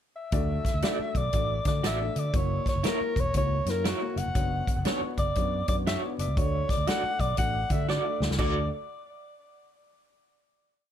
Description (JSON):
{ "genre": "uptempo 1960s-style soul", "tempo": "119 BPM", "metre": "4/4", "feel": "swing 64% on 8ths", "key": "D major", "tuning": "A4 = 440 Hz", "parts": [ { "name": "breathy alto saxophone", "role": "melody", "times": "0.2-8.7 s", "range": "F#4 to F#5", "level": "-31 LUFS", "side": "left 1 dB", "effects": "tape echo" }, { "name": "dark upright piano", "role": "accompaniment", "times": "0.3-8.7 s", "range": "A3 to D5", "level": "-35 LUFS", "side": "left 3 dB", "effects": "none" }, { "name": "fingered electric bass", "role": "bass", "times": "0.3-8.7 s", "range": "E1 to D3", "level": "-30 LUFS", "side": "equal", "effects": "none" }, { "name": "natural country drum kit", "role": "drums", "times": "0.3-8.5 s", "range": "crash cymbal, hi-hat, kick drum, snare drum", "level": "-30 LUFS", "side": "equal", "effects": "none" }, { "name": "electric guitar through a small old amp", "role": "stabs", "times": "0.8-8.6 s", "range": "D4 to D5", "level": "-33 LUFS", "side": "right 6 dB", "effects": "tremolo" } ], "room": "light reverb", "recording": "none", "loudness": "-25 LUFS", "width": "side -10 dB against mid", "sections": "0.0-0.3 pickup bar; 0.3-8.4 A section; 8.4-10.4 final chord", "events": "drum fill 7.9-8.4", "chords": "0.3 D; 2.3 F#7; 4.4 Bmadd9/F#; 6.4 D" }